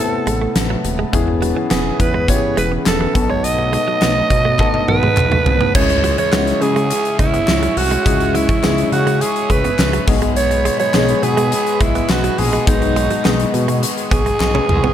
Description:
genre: 1980s-style pop.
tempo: 104 BPM.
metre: 4/4.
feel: straight.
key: unclear.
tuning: A4 = 441 Hz.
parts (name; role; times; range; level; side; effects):
breathy alto saxophone; melody; 0.0-14.9 s; D#4 to D#5; -19 LUFS; right 3 dB; shimmer reverb.
warm baby grand piano; accompaniment; 0.0-14.9 s; A2 to A4; -22 LUFS; left 6 dB; shimmer reverb.
warm analog pad; sustained chords; 0.0-14.9 s; C3 to C#6; -26 LUFS; left 1 dB; chorus, shimmer reverb.
direct-recorded clean electric guitar; riff; 0.3-14.9 s; E3 to C#4; -26 LUFS; right 6 dB; wide subtle chorus, shimmer reverb.
fat analog bass; bass; 0.3-14.9 s; D#1 to C#3; -20 LUFS; equal; none.
huge arena drum kit; drums; 0.3-14.9 s; crash cymbal, hi-hat, kick drum, snare drum, tambourine, toms; -19 LUFS; equal; gated reverb.
group handclap; percussion; 1.7-14.5 s; none; -31 LUFS; left 6 dB; none.
cranked stack guitar; accompaniment; 5.7-14.9 s; G#2 to C#4; -28 LUFS; left 2 dB; overdrive, lush chorus, shimmer reverb.
room: light reverb, small room ambience.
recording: none.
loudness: -13 LUFS.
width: side -10 dB against mid.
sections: 0.0-5.7 A section; 5.7-14.9 B section.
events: drum fill 4.6-5.7, 14.4-14.9.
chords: 0.0 Amadd9; 1.1 E6; 3.2 B7; 5.7 C#m; 10.1 G#m.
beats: 0.56 | 1.13 1.71 2.29 2.86 | 3.44 4.02 4.59 5.17 | 5.75 6.33 6.90 7.48 | 8.06 8.63 9.21 9.79 | 10.36 10.94 11.52 12.10 | 12.67 13.25 13.83 14.40.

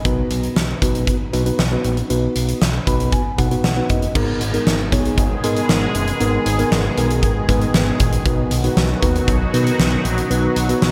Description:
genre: synth-pop.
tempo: 117 BPM.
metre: 4/4.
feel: straight.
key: G# minor.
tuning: A4 = 441 Hz.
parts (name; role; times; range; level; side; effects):
mellow tine electric piano; accompaniment; 0.0-10.9 s; B3 to B5; -24 LUFS; equal; shimmer reverb.
fat analog bass; bass; 0.1-10.9 s; F#1 to B2; -24 LUFS; equal; none.
huge arena drum kit; drums; 0.1-10.9 s; crash cymbal, hi-hat, kick drum, snare drum; -22 LUFS; equal; gated reverb.
sweeping resonant pad; sustained chords; 4.2-10.9 s; B2 to G#4; -26 LUFS; equal; chorus, shimmer reverb.
room: moderate plate reverb, RT60 2.1 s.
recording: bright 1980s-style digital production.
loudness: -18 LUFS.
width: mono.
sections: 0.0-4.2 A section; 4.2-10.9 B section.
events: tine electric piano fill 2.6-4.2.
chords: 0.1 B; 4.2 G#madd9; 8.3 B.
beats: | 0.05 0.56 1.08 1.59 | 2.10 2.61 3.13 3.64 | 4.15 4.67 5.18 5.69 | 6.20 6.72 7.23 7.74 | 8.26 8.77 9.28 9.79 | 10.31 10.82.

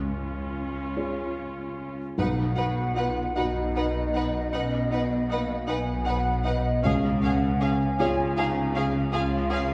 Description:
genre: cinematic.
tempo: 52 BPM (dotted quarters).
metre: 6/8.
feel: rubato.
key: unclear.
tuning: A4 = 436 Hz.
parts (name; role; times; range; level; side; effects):
felt-muted upright piano; accompaniment; 0.0-9.7 s; B1 to D#5; -33 LUFS; equal; none.
rich studio viola section; accompaniment; 0.0-9.6 s; C#4 to E#4; -39 LUFS; equal; none.
clear studio cello section; bass; 0.0-9.7 s; C#2 to C#3; -34 LUFS; equal; none.
rich studio violin section; melody; 2.2-9.6 s; E#5 to F#5; -37 LUFS; equal; none.
clear studio violin section; second line; 2.2-9.6 s; G#4 to B4; -36 LUFS; equal; none.
mellow silver concert flute; second line; 2.2-9.7 s; D#5 to G#5; -34 LUFS; equal; none.
warm clarinet; second line; 2.2-9.7 s; A#3 to F#4; -35 LUFS; equal; none.
rich studio double bass section; bass; 2.2-9.7 s; B1 to C#2; -32 LUFS; equal; none.
room: wet concert hall reverb, RT60 2.0 s.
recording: heard from further back in the room.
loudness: -26 LUFS.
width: mono.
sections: 0.0-2.2 A section; 2.2-9.7 B section.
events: none.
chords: 0.0 C#; 2.2 B; 6.8 C#.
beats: 0.95 | 2.18 3.36 | 4.53 5.68 | 6.84 7.99 | 9.13.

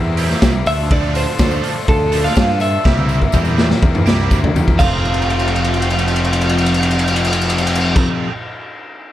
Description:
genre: indie rock.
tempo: 124 BPM.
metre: 4/4.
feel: straight.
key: F major.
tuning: A4 = 440 Hz.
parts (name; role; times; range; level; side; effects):
twelve-string electric guitar; melody; 0.0-8.0 s; A4 to F5; -22 LUFS; right 1 dB; slapback echo.
string machine, full ensemble; sustained chords; 0.0-8.0 s; F3 to C6; -29 LUFS; equal; none.
biting overdriven guitar; riff; 0.0-8.3 s; F2 to Bb4; -22 LUFS; left 6 dB; none.
fuzz fingered electric bass; bass; 0.0-8.0 s; F1 to G2; -19 LUFS; equal; overdrive.
scooped high-gain guitar; riff; 0.2-8.3 s; F3 to A4; -23 LUFS; right 8 dB; distortion, analog chorus.
raw garage drum kit; drums; 0.2-8.1 s; crash cymbal, hi-hat, kick drum, ride cymbal, snare drum, toms; -17 LUFS; equal; none.
tambourine; percussion; 0.2-8.0 s; none; -38 LUFS; left 12 dB; none.
room: light reverb.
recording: dark, warm production.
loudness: -13 LUFS.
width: side -13 dB against mid.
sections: 0.0-4.8 A section; 4.8-8.7 B section.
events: drum fill 2.9-4.8, 5.0-8.0.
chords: 0.0 C7; 0.7 Dm7; 2.9 C7; 4.8 F.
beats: 0.42 | 0.91 1.40 1.88 2.37 | 2.86 3.34 3.83 4.31 | 4.80 5.29 5.77 6.26 | 6.74 7.23 7.71 8.20.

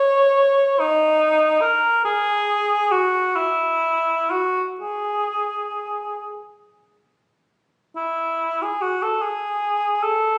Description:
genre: classical, free, expressive piece for unaccompanied cor anglais.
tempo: 31-52 BPM (dotted quarters).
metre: 6/8.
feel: rubato.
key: unclear.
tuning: A4 = 440 Hz.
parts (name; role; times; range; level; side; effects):
mellow cor anglais; solo; 0.0-10.4 s; D#4 to C#5; -20 LUFS; equal; none.
room: moderate recital hall reverb, RT60 1.4 s.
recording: recorded on a phone in the room, club reverb.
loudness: -21 LUFS.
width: mono.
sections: 0.0-8.0 A section; 8.0-10.4 B section.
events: none.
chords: none.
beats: 0.80 | 2.05 3.37 | 4.81 6.31 | 7.96 9.22.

